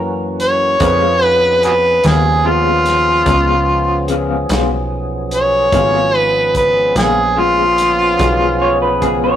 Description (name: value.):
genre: slow blues.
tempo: 49 BPM (dotted quarters).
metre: 12/8.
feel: straight.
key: Db mixolydian.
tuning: A4 = 440 Hz.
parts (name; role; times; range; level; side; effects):
clear upright piano; accompaniment; 0.0-9.4 s; Eb4 to Cb5; -28 LUFS; equal; none.
tonewheel organ; sustained chords; 0.0-9.4 s; Fb3 to Ab4; -22 LUFS; equal; slow rotary speaker, overdrive, chorus vibrato.
plucky analog bass; bass; 0.0-9.4 s; Ab1 to Gb2; -20 LUFS; equal; none.
overdriven harmonica; melody; 0.4-9.0 s; F4 to Db5; -13 LUFS; equal; none.
warm soul drum kit; drums; 0.4-9.2 s; hi-hat, kick drum, snare drum; -22 LUFS; equal; none.
electric guitar through a small old amp; accompaniment; 0.8-9.3 s; Db3 to F4; -21 LUFS; left 4 dB; tremolo.
electric guitar through a small old amp; second line; 8.6-9.4 s; Ab4 to Db5; -17 LUFS; right 2 dB; spring reverb.
room: moderate stone room reverb, RT60 1.1 s.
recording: rough rehearsal-room recording, tube saturation.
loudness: -11 LUFS.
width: side -10 dB against mid.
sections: 0.0-9.4 A section.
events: none.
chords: 0.0 Gb7; 0.8 Db7.